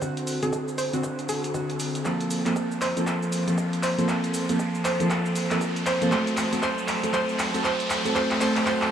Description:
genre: deep house.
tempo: 118 BPM.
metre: 4/4.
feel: swing 60% on 16ths.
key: unclear.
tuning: A4 = 439 Hz.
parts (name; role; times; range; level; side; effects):
hollow square pluck; melody; 0.0-8.9 s; A4 to C5; -30 LUFS; right 1 dB; chorus, tape echo.
warm analog keys; stabs; 0.0-8.9 s; D3 to A4; -25 LUFS; right 1 dB; chorus, sidechain pumping, low-pass filter, tape echo.
electronic kick drum; drums; 0.0-8.8 s; none; -39 LUFS; equal; none.
punchy analog drum machine; drums; 0.0-8.9 s; handclaps, hi-hat, shaker; -30 LUFS; equal; none.
riser; sound effects; 0.0-8.9 s; none; -34 LUFS; left 1 dB; none.
room: wet cathedral reverb, RT60 5.0 s.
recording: dreamy mix soaked in reverb, small room ambience.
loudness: -23 LUFS.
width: side -9 dB against mid.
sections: 0.0-8.9 A section.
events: build-up 0.0-8.9; riser 0.0-8.9; filter sweep on synth pluck 0.0-8.9; drum fill 2.1-8.9.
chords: 0.0 D7; 2.1 Fadd11; 6.1 F#dim.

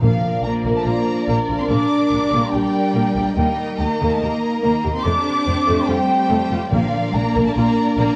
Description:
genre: cinematic.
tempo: 143 BPM.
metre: 4/4.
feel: straight.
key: Bb major.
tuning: A4 = 437 Hz.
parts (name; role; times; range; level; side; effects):
warm symphonic violin section; melody; 0.0-8.2 s; F5 to D6; -32 LUFS; equal; none.
mellow large flute ensemble; second line; 0.0-8.2 s; F5 to D6; -26 LUFS; equal; none.
rich symphonic violin section; second line; 0.0-8.2 s; G4 to Eb5; -31 LUFS; equal; none.
dark symphonic viola section; accompaniment; 0.0-8.2 s; A3 to G4; -27 LUFS; equal; none.
mellow French horn section; sustained chords; 0.0-8.2 s; F3 to Eb4; -27 LUFS; equal; none.
dark studio double bass section; bass; 0.0-8.1 s; Bb1 to F2; -26 LUFS; equal; none.
warm symphonic cello section; bass; 0.0-8.2 s; F3 to D4; -25 LUFS; equal; none.
timpani; percussion; 0.0-0.6, 6.7-7.3 s; Bb2; -26 LUFS; equal; none.
room: moderate scoring stage reverb, RT60 1.8 s.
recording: worn, warbling old tape, cassette tape, warbly pitch drift.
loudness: -19 LUFS.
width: mono.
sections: 0.0-8.2 A section.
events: none.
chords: 0.0 Bb; 1.7 Gm/Bb; 3.4 Eb; 5.1 Fadd9; 6.7 Bb.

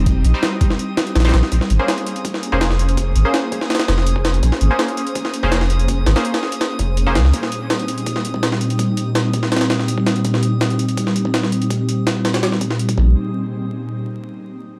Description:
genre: drum and bass, jungle.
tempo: 165 BPM.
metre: 4/4.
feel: straight.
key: Bb dorian.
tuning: A4 = 440 Hz.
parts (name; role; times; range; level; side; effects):
ethereal airy pad; sustained chords; 0.0-13.1 s; Bb2 to C5; -24 LUFS; equal; ensemble chorus, built-in reverb.
soft dub sub bass; bass; 0.0-7.3, 13.0-13.1 s; F1 to Db2; -18 LUFS; equal; none.
drifting glass-harmonics texture; texture; 0.0-13.2 s; Eb6; -35 LUFS; equal; chorus, built-in reverb.
jungle sampler-style drum kit; drums; 0.1-13.1 s; hi-hat, kick drum, snare drum; -23 LUFS; equal; overdrive, high-pass filter on kick, small room ambience, high-pass filter on hats, high-pass filter on snare.
band-passed chord stab; stabs; 0.3-7.2 s; G3 to C5; -27 LUFS; equal; chorus, dub echo.
room: light reverb.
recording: dark, warm production, vinyl crackle.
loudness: -18 LUFS.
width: mono.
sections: 0.0-1.5 A section; 1.5-13.2 B section; 13.2-14.6 C section.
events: drop 0.0-1.5; filter sweep on ambient pad 1.5-13.2.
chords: 0.0 Cm; 1.5 Bbm9; 7.3 Cm/Bb; 13.0 Bbm9; 13.2 N.C..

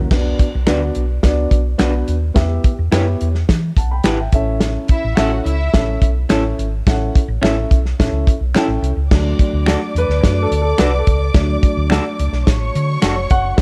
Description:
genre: uptempo 1960s-style soul.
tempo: 107 BPM.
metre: 4/4.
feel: straight.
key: D major.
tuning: A4 = 440 Hz.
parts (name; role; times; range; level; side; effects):
mellow tonewheel organ; sustained chords; 0.0-0.1, 13.6 s; D3 to G4; -33 LUFS; equal; slow rotary speaker.
hollow-body short-scale fingered electric bass; bass; 0.0-13.6 s; F1 to E3; -21 LUFS; equal; none.
dark upright piano; accompaniment; 0.1-13.6 s; F#3 to B5; -24 LUFS; equal; none.
warm soul drum kit; drums; 0.1-13.6 s; crash cymbal, hi-hat, kick drum, snare drum; -18 LUFS; equal; none.
electric guitar through a small old amp; stabs; 0.7-13.2 s; C#4 to B4; -25 LUFS; equal; none.
finger snap; percussion; 0.7-13.2 s; none; -30 LUFS; equal; none.
warm studio string section; second line; 4.9-13.6 s; E4 to D6; -27 LUFS; equal; none.
room: studio reverb.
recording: dark, warm production.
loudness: -16 LUFS.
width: mono.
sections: 0.1-9.1 A section; 9.1-13.6 B section.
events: upright piano solo 9.1-13.6.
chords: 0.1 Bm; 2.4 Em; 4.3 A; 9.1 D.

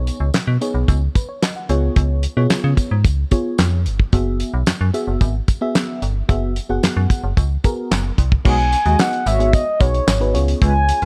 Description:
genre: early-eighties boogie funk.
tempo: 111 BPM.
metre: 4/4.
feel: straight.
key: B major.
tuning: A4 = 440 Hz.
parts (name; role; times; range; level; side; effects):
mellow FM electric piano; accompaniment; 0.0-11.0 s; B3 to F#5; -27 LUFS; equal; chorus, phaser.
metallic FM bass; bass; 0.0-11.1 s; F#1 to C#3; -21 LUFS; equal; none.
damped 70s drum kit; drums; 0.1-11.1 s; crash cymbal, handclaps, hi-hat, kick drum, snare drum; -20 LUFS; equal; none.
tambourine; percussion; 0.1-11.0 s; none; -38 LUFS; equal; none.
mellow horn-like synth lead; melody; 8.5-11.1 s; C#5 to G#5; -21 LUFS; equal; chorus.
mellow synth brass; second line; 8.5-11.1 s; G#3 to D#5; -26 LUFS; equal; chorus.
room: small room ambience.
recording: dark, warm production.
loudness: -18 LUFS.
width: mono.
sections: 0.0-8.5 A section; 8.5-11.1 B section.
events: none.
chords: 0.0 B69; 1.7 C#7; 4.1 F#9sus4; 8.5 B69; 10.3 C#7.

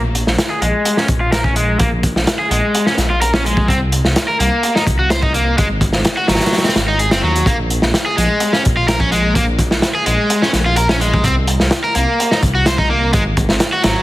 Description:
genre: breakbeat, breaks.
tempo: 127 BPM.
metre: 4/4.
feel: straight.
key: unclear.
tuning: A4 = 440 Hz.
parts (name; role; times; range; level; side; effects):
dark detuned saw bass; bass; 0.0-13.9 s; Gb1 to Eb2; -18 LUFS; equal; none.
crunchy breakbeat drum kit; drums; 0.1-14.0 s; hi-hat, kick drum, snare drum; -16 LUFS; equal; none.
crunchy overdriven guitar; riff; 0.5-14.0 s; Gb3 to C5; -17 LUFS; equal; tube saturation, low-pass filter, ping-pong delay.
room: light reverb, small room ambience.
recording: heavily compressed radio sound, multiband compression.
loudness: -13 LUFS.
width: side -16 dB against mid.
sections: 0.0-14.0 A section.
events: none.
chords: 0.0 N.C.; 5.6 Ab5; 7.5 N.C.; 13.1 Ab5.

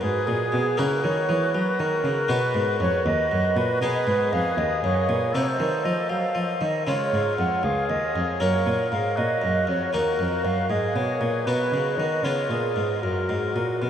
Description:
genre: classical, baroque-style sonata movement with continuo.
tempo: 78 BPM (dotted quarters).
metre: 12/8.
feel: straight.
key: F# major from 3.8 s.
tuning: A4 = 441 Hz.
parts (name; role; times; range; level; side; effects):
clear oboe; melody; 0.0-13.9 s; E#4 to A#4; -30 LUFS; left 4 dB; none.
bright baroque flute; second line; 0.0-13.9 s; F#4 to F#5; -25 LUFS; right 2 dB; none.
harpsichord; accompaniment; 0.0-13.9 s; C#2 to G#4; -28 LUFS; left 1 dB; none.
rich cello; bass; 0.0-13.9 s; C#2 to Gb3; -28 LUFS; equal; none.
room: wet huge ambient reverb, RT60 7.6 s.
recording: in a vast, echoing space.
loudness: -21 LUFS.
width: side -9 dB against mid.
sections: 0.0-13.9 A section.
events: none.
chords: 0.0 B; 0.8 Gb7/Db; 2.3 B; 5.3 Cdim7; 6.9 C#; 8.4 F#; 9.9 D#m; 11.5 B; 12.2 C#7; 13.0 F#.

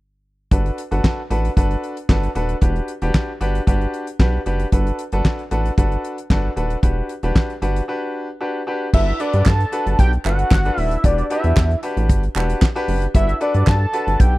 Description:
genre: early-eighties boogie funk.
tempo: 114 BPM.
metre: 4/4.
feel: straight.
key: G major.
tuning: A4 = 440 Hz.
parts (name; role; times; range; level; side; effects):
clear baby grand piano; accompaniment; 0.5-14.3 s; D4 to B4; -25 LUFS; left 1 dB; none.
rubbery square bass; bass; 0.5-14.4 s; Eb1 to G2; -19 LUFS; equal; none.
damped 70s drum kit; drums; 0.5-14.3 s; crash cymbal, handclaps, hi-hat, kick drum, snare drum; -16 LUFS; equal; none.
fat analog lead; melody; 8.9-14.4 s; D5 to A5; -22 LUFS; equal; chorus.
group handclap; percussion; 9.5-13.8 s; none; -29 LUFS; right 8 dB; none.
room: studio ambience.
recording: dry, close 1970s-style studio recording.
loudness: -17 LUFS.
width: side -19 dB against mid.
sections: 0.5-8.9 A section; 8.9-14.4 B section.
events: break 7.9-8.9.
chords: 0.5 Gmaj9; 2.6 Em7; 4.7 Gmaj9; 6.8 Em7; 8.9 Gmaj9; 11.0 Em7; 13.1 Gmaj9.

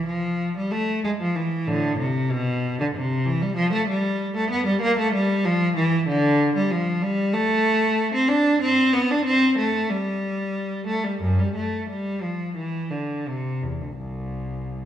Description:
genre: classical, baroque-style suite movement for unaccompanied cello.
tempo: 83-96 BPM.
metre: 3/4.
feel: rubato.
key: A minor, C major from 7.3 s.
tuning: A4 = 440 Hz.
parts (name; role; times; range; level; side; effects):
clear cello; solo; 0.0-14.9 s; C2 to D4; -21 LUFS; equal; none.
room: wet recital hall reverb, RT60 1.5 s.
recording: none.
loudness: -20 LUFS.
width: side -10 dB against mid.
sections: 0.0-14.9 A section.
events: none.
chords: none.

